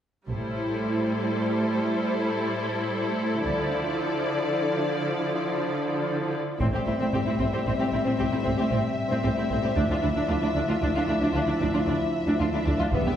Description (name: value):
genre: cinematic, epic orchestral film score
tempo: 76 BPM (dotted quarters)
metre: 12/8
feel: straight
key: A minor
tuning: A4 = 442 Hz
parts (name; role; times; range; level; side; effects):
- warm symphonic violin section; second line; 0.3-13.1 s; B3 to D5; -31 LUFS; left 3 dB; none
- rich symphonic viola section; accompaniment; 0.3-13.1 s; F3 to E4; -29 LUFS; right 1 dB; none
- rich symphonic cello section; bass; 0.3-13.1 s; D2 to D3; -30 LUFS; right 1 dB; none
- warm symphonic double bass section; bass; 0.3-13.0 s; E1 to D2; -31 LUFS; right 1 dB; none
- warm studio violin section; melody; 6.6-13.2 s; E5; -32 LUFS; left 2 dB; none
- warm French horn section; sustained chords; 6.6-13.2 s; F3 to E4; -30 LUFS; left 1 dB; none
- taiko ensemble; drums; 6.6-7.6, 12.9-13.2 s; none; -33 LUFS; equal; none
room: wet scoring stage reverb, RT60 1.8 s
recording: heard from further back in the room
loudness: -23 LUFS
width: side -10 dB against mid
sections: 0.3-6.6 A section; 6.6-13.2 B section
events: none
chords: 0.3 Am7; 3.5 Dmadd9; 6.6 Am7; 9.8 Dmadd9